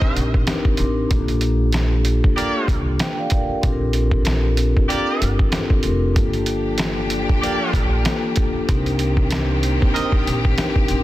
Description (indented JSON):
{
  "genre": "hip hop, boom-bap hip-hop",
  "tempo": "95 BPM",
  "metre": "4/4",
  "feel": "swing 55% on 16ths",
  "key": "G minor",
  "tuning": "A4 = 440 Hz",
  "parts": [
    { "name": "vibraphone with soft mallets", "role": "accompaniment", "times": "0.0-11.0 s", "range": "Bb3 to G5", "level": "-23 LUFS", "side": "left 2 dB", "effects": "cassette tape" },
    { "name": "warm horn section", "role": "stabs", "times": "0.0-10.1 s", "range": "Bb3 to Eb5", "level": "-25 LUFS", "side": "right 2 dB", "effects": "digital delay" },
    { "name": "trip hop sampler-style drum kit", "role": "drums", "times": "0.0-11.0 s", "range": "hi-hat, kick drum, snare drum", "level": "-20 LUFS", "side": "equal", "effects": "none" },
    { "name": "upright bass", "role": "bass", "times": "0.2-11.0 s", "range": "F1 to C2", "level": "-21 LUFS", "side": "equal", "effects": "none" },
    { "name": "warm studio string section", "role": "sustained chords", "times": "6.1-11.0 s", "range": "Eb3 to G4", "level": "-27 LUFS", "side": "equal", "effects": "none" }
  ],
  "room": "small room ambience",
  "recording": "dense, heavily limited modern master",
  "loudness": "-17 LUFS",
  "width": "side -15 dB against mid",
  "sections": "0.0-11.0 A section",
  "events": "none",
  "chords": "0.0 Cm7; 1.1 Gm7/Bb; 3.6 Bb6; 6.2 Gm7; 8.7 Cm7"
}